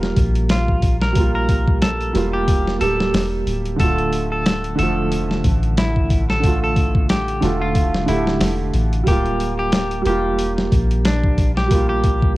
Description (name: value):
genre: trip hop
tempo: 91 BPM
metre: 4/4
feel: swing 57% on 16ths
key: unclear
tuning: A4 = 440 Hz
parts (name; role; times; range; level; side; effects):
- felt-muted upright piano; accompaniment; 0.0-12.4 s; D3 to G4; -22 LUFS; right 2 dB; harmonic tremolo
- soft 808-style bass; bass; 0.0-12.4 s; D1 to Bb1; -22 LUFS; equal; none
- boom bap sampler-style drum kit; drums; 0.0-12.4 s; hi-hat, kick drum, snare drum; -19 LUFS; equal; none
- semi-hollow electric guitar; melody; 0.5-12.3 s; D4 to Bb4; -24 LUFS; left 1 dB; tape echo
room: little or no reverb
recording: worn, warbling old tape, cassette tape, warbly pitch drift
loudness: -16 LUFS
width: side -18 dB against mid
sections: 0.0-12.4 A section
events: none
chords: 0.0 Gm7; 3.8 Dm; 9.1 Gm7/D